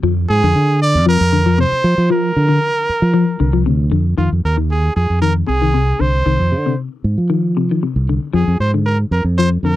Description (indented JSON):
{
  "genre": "afrobeat",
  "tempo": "116 BPM",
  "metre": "4/4",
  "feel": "straight",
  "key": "F dorian",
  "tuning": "A4 = 441 Hz",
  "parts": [
    { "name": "semi-hollow electric guitar", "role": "arpeggios", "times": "0.0-9.8 s", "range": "C3 to F3", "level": "-19 LUFS", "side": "left 6 dB", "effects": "spring reverb" },
    { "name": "fingered electric bass", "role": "bass", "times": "0.0-9.8 s", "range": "C2 to F3", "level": "-15 LUFS", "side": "right 1 dB", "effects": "none" },
    { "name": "brilliant trumpet", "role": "melody", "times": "0.3-9.8 s", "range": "F4 to D5", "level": "-18 LUFS", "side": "right 2 dB", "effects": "none" }
  ],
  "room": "little or no reverb",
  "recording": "dry, close 1970s-style studio recording",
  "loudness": "-13 LUFS",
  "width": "side -14 dB against mid",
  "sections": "0.0-4.2 A section; 4.2-9.8 B section",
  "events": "none",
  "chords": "0.0 Bb/F; 4.2 Fm7; 8.3 Bb7/F",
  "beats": "| 0.03 0.55 1.07 1.58 | 2.10 2.62 3.14 3.66 | 4.18 4.70 5.21 5.74 | 6.25 6.78 7.29 7.82 | 8.34 8.86 9.38"
}